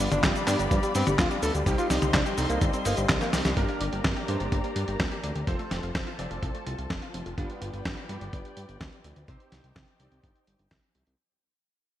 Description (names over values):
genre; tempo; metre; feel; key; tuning
italo disco; 126 BPM; 4/4; straight; unclear; A4 = 440 Hz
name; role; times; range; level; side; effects
warm alto saxophone; melody; 0.0-3.5 s; G3 to A4; -31 LUFS; equal; ping-pong delay
muted studio string section; sustained chords; 0.0-11.2 s; Eb4 to C6; -36 LUFS; left 2 dB; none
wide unison pluck; arpeggios; 0.0-7.3 s; F3 to G4; -37 LUFS; left 2 dB; ping-pong delay
bright electric grand piano; stabs; 0.0-11.2 s; G3 to D5; -36 LUFS; right 2 dB; ensemble chorus, low-pass filter
fat analog bass; bass; 0.0-11.2 s; F1 to G2; -31 LUFS; equal; none
dusty soul sampler-style drum kit; drums; 0.0-11.2 s; cabasa, handclaps, hi-hat, snare drum, toms; -29 LUFS; equal; gated reverb
electronic kick drum; drums; 0.2-10.8 s; none; -30 LUFS; equal; none
room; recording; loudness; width
moderate lush hall reverb, RT60 2.1 s; bright 1980s-style digital production, vinyl crackle; -25 LUFS; side -12 dB against mid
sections
0.0-3.6 A section; 3.6-11.2 B section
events
drum fill 3.2-3.6; fade-out 3.6-11.2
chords
0.0 G7; 1.7 Cm; 3.6 Gm; 5.5 F; 7.4 G7; 9.3 Cm